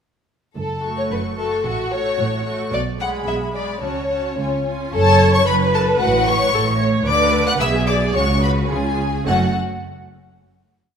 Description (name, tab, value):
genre	quick classical-period movement for string orchestra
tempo	111 BPM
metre	2/4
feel	straight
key	F# minor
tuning	A4 = 440 Hz
part	rich studio violin section	second line	0.6-9.6 s	F#4 to F#5	-22 LUFS	left 2 dB	none
part	rich studio cello section	bass	0.6-9.6 s	F#2 to D3	-25 LUFS	right 2 dB	none
part	rich studio double bass section	bass	0.6-9.6 s	F#1 to D2	-23 LUFS	right 2 dB	none
part	rich studio violin section	melody	0.8-9.6 s	F#5 to F#6	-23 LUFS	left 4 dB	none
part	rich studio viola section	accompaniment	0.8-9.6 s	G#3 to C#5	-23 LUFS	right 2 dB	none
room	wet scoring stage reverb, RT60 1.5 s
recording	minimal, uncompressed stereo recording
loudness	-16 LUFS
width	side -7 dB against mid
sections	0.6-4.9 A section; 4.9-9.3 A section; 9.3-10.4 final chord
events	none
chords	0.6 F#m; 1.7 F#m/A; 2.7 Bm6; 3.8 F#m/C#; 4.4 C#; 4.9 F#5; 6.0 A69; 7.1 Bm/D; 7.6 Bm; 8.1 C#; 9.3 F#m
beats	| 0.56 1.11 | 1.65 2.19 | 2.73 3.27 | 3.82 4.38 | 4.93 5.47 | 6.01 6.54 | 7.07 7.61 | 8.15 8.70 | 9.26